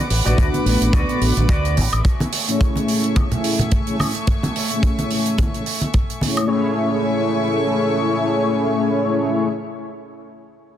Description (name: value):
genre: nu-disco, nu disco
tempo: 108 BPM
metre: 4/4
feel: swing 56% on 16ths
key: A major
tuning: A4 = 443 Hz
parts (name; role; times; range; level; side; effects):
- warm chamber string section; sustained chords; 0.0-9.5 s; A3 to D6; -27 LUFS; equal; sidechain pumping
- electric guitar with an envelope filter; riff; 0.1-1.8 s; F#4 to D5; -28 LUFS; right 1 dB; wide subtle chorus, tape echo
- fingered electric bass with an envelope filter; bass; 0.1-2.0 s; A1 to D2; -19 LUFS; equal; none
- hi-hat and woodblock; drums; 0.1-6.5 s; none; -26 LUFS; right 4 dB; none
- mellow synth brass; accompaniment; 0.3-9.5 s; A3 to E5; -20 LUFS; left 1 dB; chorus, cassette tape, sidechain pumping, tape echo
- kick drum; drums; 0.4-6.1 s; none; -19 LUFS; equal; none
- congas; percussion; 0.5-6.3 s; none; -25 LUFS; equal; none
room: light reverb, small room reverb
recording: dense, heavily limited modern master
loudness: -17 LUFS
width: side -10 dB against mid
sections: 0.0-6.5 A section; 6.5-8.7 B section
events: filter sweep on analog polysynth 0.0-6.5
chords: 0.0 D6; 2.0 Amaj7